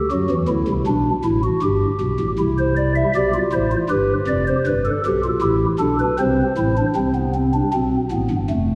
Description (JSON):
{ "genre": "classical, baroque-style 3-part fugue for pipe organ", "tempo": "79 BPM", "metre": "3/4", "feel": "straight", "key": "unclear", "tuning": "A4 = 440 Hz", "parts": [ { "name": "pipe organ, stopped flute", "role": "solo", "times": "0.0-8.8 s", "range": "F1 to E5", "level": "-19 LUFS", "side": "equal", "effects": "none" } ], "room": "wet church reverb, RT60 2.6 s", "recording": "none", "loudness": "-19 LUFS", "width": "mono", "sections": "0.0-7.0 A section; 7.0-8.8 B section", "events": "none", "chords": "0.1 D7; 1.6 G; 2.4 C; 3.9 G; 6.2 C; 7.0 Am/C", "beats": "| 0.11 0.86 1.62 | 2.38 3.14 3.90 | 4.66 5.42 6.19 | 6.96 7.74 8.51" }